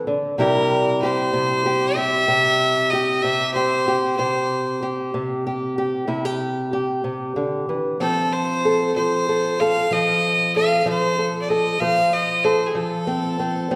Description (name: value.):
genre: acoustic country blues, solo or duo.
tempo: 63 BPM (dotted quarters).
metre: 12/8.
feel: straight.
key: C major.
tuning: A4 = 435 Hz.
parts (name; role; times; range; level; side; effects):
fingerpicked old ladder-braced acoustic guitar; accompaniment; 0.0-13.8 s; C3 to C5; -24 LUFS; equal; none.
bright fiddle; melody; 0.4-13.8 s; Ab4 to F5; -23 LUFS; equal; none.
room: wet scoring stage reverb, RT60 1.5 s.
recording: recorded in a church or concert hall.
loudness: -21 LUFS.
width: mono.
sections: 0.0-13.8 A section.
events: none.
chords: 0.4 C; 8.0 F.